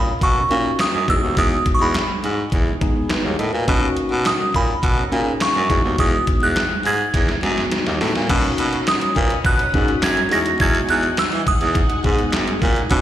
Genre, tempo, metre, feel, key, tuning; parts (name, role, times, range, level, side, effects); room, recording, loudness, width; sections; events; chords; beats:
early-eighties boogie funk; 104 BPM; 4/4; straight; A4 = 440 Hz
delicate synth tine bell; melody; 0.0-12.3 s; B5 to A#6; -21 LUFS; right 1 dB; chorus, slapback echo, analog delay
mellow electric guitar; riff; 0.0-13.0 s; G#3 to B4; -32 LUFS; right 6 dB; lush chorus, slapback echo
growling baritone saxophone; bass; 0.0-13.0 s; D#2 to E3; -21 LUFS; equal
detuned 8-bit digital drum machine; drums; 0.2-13.0 s; crash cymbal, handclaps, hi-hat, kick drum, snare drum; -20 LUFS; equal
tine electric piano; accompaniment; 0.5-13.0 s; G#3 to D#5; -24 LUFS; left 2 dB; medium stereo tremolo, slapback echo
string machine, full ensemble; sustained chords; 8.3-13.0 s; D#4 to D#6; -30 LUFS; equal; ensemble chorus
light reverb, digital ambience; live gig heard through the venue's PA, recital hall reverb; -16 LUFS; side -12 dB against mid
0.0-8.3 A section; 8.3-13.0 B section
drum fill 7.1-8.3
0.0 Bmaj9; 1.1 Emaj9; 3.7 Bmaj9; 5.7 Emaj9; 8.3 Bmaj9; 10.3 Emaj9
0.22 0.79 | 1.37 1.95 2.52 3.10 | 3.68 4.25 4.83 5.41 | 5.99 6.56 7.14 7.72 | 8.29 8.87 9.45 10.02 | 10.60 11.18 11.76 12.33 | 12.91